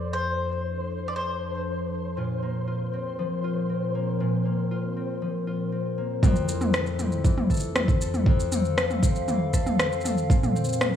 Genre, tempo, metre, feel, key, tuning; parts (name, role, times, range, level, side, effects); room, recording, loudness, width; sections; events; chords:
folktronica; 118 BPM; 4/4; straight; F major; A4 = 441 Hz
mandolin; melody; 0.0-1.9 s; C5 to D5; -31 LUFS; left 2 dB; tape echo
warbly tape-like pad; sustained chords; 0.0-11.0 s; F2 to F5; -31 LUFS; equal; chorus, built-in reverb
concert harp; arpeggios; 0.0-11.0 s; F2 to A4; -28 LUFS; left 3 dB; vintage 12-bit sampler grit, tape echo
flickering grainy texture; texture; 0.0-6.2 s; C5; -36 LUFS; left 1 dB; built-in reverb
electronic kick drum; drums; 6.2-10.4 s; -21 LUFS; right 1 dB; overdrive
organic electronic drum kit; drums; 6.2-11.0 s; rim click, shaker, toms; -26 LUFS; equal; overdrive
light reverb; studio reverb; -23 LUFS; side -9 dB against mid
0.0-6.2 A section; 6.2-11.0 B section
filter sweep on ambient pad 0.0-6.2
0.0 F; 2.2 Bbsus2; 6.2 Fmaj7; 10.3 Bbsus2